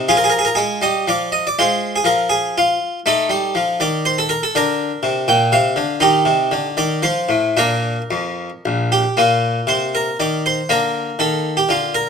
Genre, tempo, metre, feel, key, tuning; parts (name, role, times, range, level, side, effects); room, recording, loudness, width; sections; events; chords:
classical, baroque-style suite movement for harpsichord; 120 BPM; 3/4; rubato; Bb major from 3.1 s; A4 = 440 Hz
harpsichord; solo; 0.0-12.1 s; Bb1 to G5; -15 LUFS; equal
moderate stone room reverb, RT60 1.0 s; minimal, uncompressed stereo recording; -15 LUFS; side -6 dB against mid
0.0-9.2 A section; 9.2-12.1 B section
0.1 Fm; 3.1 F7; 4.5 Bb; 6.0 Cm; 7.0 F; 7.6 Bb; 9.2 Bb5; 10.7 Bb/D